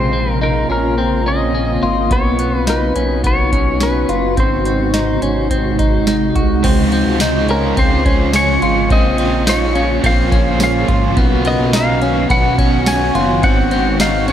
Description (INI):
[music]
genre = dream pop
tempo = 106 BPM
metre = 4/4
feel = straight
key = Db major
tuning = A4 = 440 Hz
[part]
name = clean lap steel guitar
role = melody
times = 0.0-14.3 s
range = Bb4 to Ab5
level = -20 LUFS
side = left 1 dB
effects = digital delay, shimmer reverb
[part]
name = shimmering ambient pad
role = sustained chords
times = 0.0-14.3 s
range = C3 to Gb4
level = -19 LUFS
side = right 1 dB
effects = chorus, built-in reverb, shimmer reverb
[part]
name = clean electric guitar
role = arpeggios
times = 0.0-14.3 s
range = Cb4 to Gb4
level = -20 LUFS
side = left 2 dB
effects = wide subtle chorus, digital delay, shimmer reverb
[part]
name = chorused synth bass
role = bass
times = 0.0-14.3 s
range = Gb1 to Db2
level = -20 LUFS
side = equal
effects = none
[part]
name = booming analog drum machine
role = drums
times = 2.1-14.3 s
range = crash cymbal, hi-hat, kick drum, ride cymbal, snare drum, tambourine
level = -17 LUFS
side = equal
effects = overdrive
[part]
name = biting overdriven guitar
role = accompaniment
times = 6.6-14.3 s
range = Ab2 to C5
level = -22 LUFS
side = right 3 dB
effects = tremolo, wide subtle chorus, shimmer reverb
[sound]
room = moderate lush hall reverb, RT60 1.8 s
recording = none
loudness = -12 LUFS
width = side -10 dB against mid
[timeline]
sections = 0.0-6.6 A section; 6.6-14.3 B section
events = none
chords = 0.0 Bbmadd9; 2.1 Cbadd9; 4.4 Ab7; 6.6 Dbmaj7; 8.9 Bbmadd9; 11.2 Cbadd9; 13.4 Ab7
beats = 0.41 0.98 1.55 | 2.11 2.68 3.24 3.81 | 4.38 4.94 5.51 6.07 | 6.64 7.21 7.77 8.34 | 8.90 9.47 10.04 10.60 | 11.17 11.73 12.30 12.87 | 13.43 14.00